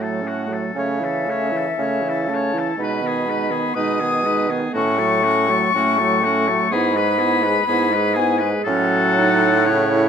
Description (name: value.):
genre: classical, slow romantic movement for wind quintet.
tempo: 61 BPM.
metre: 4/4.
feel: rubato.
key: unclear.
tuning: A4 = 440 Hz.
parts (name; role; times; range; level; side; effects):
clear oboe; second line; 0.0-10.1 s; F#4 to C#5; -25 LUFS; left 4 dB; none.
bright clarinet; accompaniment; 0.0-10.1 s; A3 to G#4; -25 LUFS; right 7 dB; none.
clear French horn; accompaniment; 0.0-10.1 s; C#3 to B3; -26 LUFS; equal; none.
clear bassoon; bass; 0.0-10.1 s; G#2 to C#3; -22 LUFS; right 2 dB; none.
mellow concert flute; melody; 0.2-10.1 s; E5 to D#6; -21 LUFS; left 5 dB; none.
room: moderate recital hall reverb, RT60 1.7 s.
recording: none.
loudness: -16 LUFS.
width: side -7 dB against mid.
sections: 0.0-10.1 A section.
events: none.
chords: 0.0 F#m/A; 0.8 A/C#; 2.8 G#m/B; 4.7 F#m/A; 6.7 E/G#; 8.7 F#m/A.